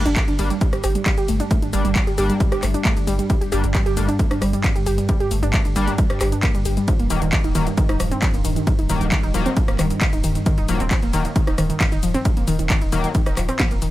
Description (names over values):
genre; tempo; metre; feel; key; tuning
driving peak-time techno; 134 BPM; 4/4; straight; G minor; A4 = 440 Hz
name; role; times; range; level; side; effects
sync-sweep polysynth; stabs; 0.0-13.1 s; Eb3 to D4; -30 LUFS; left 3 dB; chorus, sidechain pumping, digital delay
saturated sub bass; bass; 0.0-13.9 s; Eb1 to G1; -24 LUFS; equal; overdrive, sidechain pumping, low-pass filter
deep dark ambient pad; drone; 0.6-13.9 s; G2; -28 LUFS; equal; chorus, built-in reverb, sidechain pumping
warbly dusty pluck; riff; 0.1-13.9 s; Eb3 to G4; -24 LUFS; equal; chorus, tube saturation, sidechain pumping, dub echo
punchy analog drum machine; drums; 0.1-13.9 s; handclaps, hi-hat, ride cymbal, rim click, shaker, snare drum; -27 LUFS; left 1 dB; overdrive, sidechain pumping on hats, sidechain pumping on perc, sidechain pumping on cymbals
electronic kick drum; drums; 0.2-13.7 s; none; -20 LUFS; equal; none
room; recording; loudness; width
little or no reverb; none; -17 LUFS; side -15 dB against mid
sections
0.0-13.9 A section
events
drum fill 13.6-13.9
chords
0.0 Gm; 6.9 Ebm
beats
0.16 0.61 1.06 | 1.51 1.95 2.40 2.85 | 3.30 3.75 4.19 4.64 | 5.09 5.54 5.98 6.43 | 6.88 7.33 7.78 8.22 | 8.67 9.12 9.57 10.01 | 10.46 10.91 11.36 11.80 | 12.25 12.70 13.15 13.60